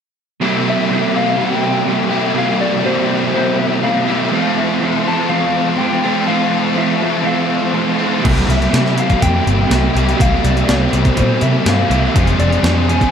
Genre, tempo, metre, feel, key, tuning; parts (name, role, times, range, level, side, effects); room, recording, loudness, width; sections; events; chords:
rock, shoegaze and dream pop; 123 BPM; 4/4; straight; C mixolydian; A4 = 441 Hz
electric guitar at the edge of break-up; riff; 0.4-13.1 s; F2 to F4; -18 LUFS; right 7 dB; reverse reverb
raw garage guitar; riff; 0.4-13.1 s; F2 to A4; -20 LUFS; left 8 dB; overdrive, ensemble chorus
tight distorted guitar; riff; 0.4-13.1 s; C3 to F4; -21 LUFS; equal; distortion
soft struck synth lead; melody; 0.7-13.1 s; C5 to A5; -21 LUFS; left 4 dB; chorus, diffuse ambient delay
breakbeat sampler-style drum kit; drums; 8.2-13.1 s; crash cymbal, hi-hat, kick drum, snare drum; -18 LUFS; equal; overdrive
vintage muted picked electric bass; bass; 8.3-13.0 s; F1 to C3; -16 LUFS; equal
wet lush hall reverb, RT60 1.8 s; dreamy mix soaked in reverb; -13 LUFS; side -7 dB against mid
0.4-13.1 A section
0.4 C7sus4; 4.3 Fmaj7; 8.2 C7sus4; 12.1 Fm6